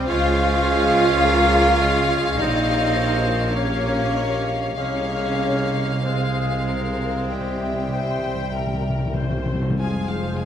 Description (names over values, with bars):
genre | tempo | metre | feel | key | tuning
classical, slow romantic movement for symphony orchestra | 46-53 BPM | 4/4 | rubato | F minor | A4 = 440 Hz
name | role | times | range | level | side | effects
rich chamber violin section | melody | 0.0-10.4 s | F5 to Ab5 | -30 LUFS | left 6 dB | none
mellow clarinet | second line | 0.0-10.4 s | Ab4 to F5 | -34 LUFS | equal | none
mellow flute section | second line | 0.0-10.4 s | C5 to F5 | -29 LUFS | left 2 dB | none
warm cor anglais | second line | 0.0-10.4 s | Ab3 to F4 | -29 LUFS | right 4 dB | none
warm symphonic violin section | second line | 0.0-10.4 s | C5 to Ab5 | -31 LUFS | left 1 dB | none
rich symphonic viola section | accompaniment | 0.0-10.4 s | G4 to F5 | -33 LUFS | equal | none
mellow French horn section | sustained chords | 0.0-10.4 s | Ab3 to F5 | -29 LUFS | left 2 dB | none
rich symphonic cello section | bass | 0.0-10.4 s | F2 to F4 | -25 LUFS | equal | none
warm symphonic double bass section | bass | 0.0-10.4 s | F1 to Db2 | -26 LUFS | right 2 dB | none
warm bassoon | accompaniment | 0.1-10.4 s | F3 to Bb3 | -31 LUFS | right 1 dB | none
mellow tuba | bass | 0.1-9.5 s | Bb1 to Db2 | -27 LUFS | right 2 dB | none
timpani | percussion | 7.3-9.8 s | C3 | -26 LUFS | left 1 dB | none
room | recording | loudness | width
moderate scoring stage reverb, RT60 1.7 s | none | -18 LUFS | side -9 dB against mid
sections
0.0-9.8 A section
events
timpani fill 7.3-9.8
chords
0.1 Db; 2.4 Gm7b5/Bb; 4.8 Fm/C; 7.3 C; 9.8 Fm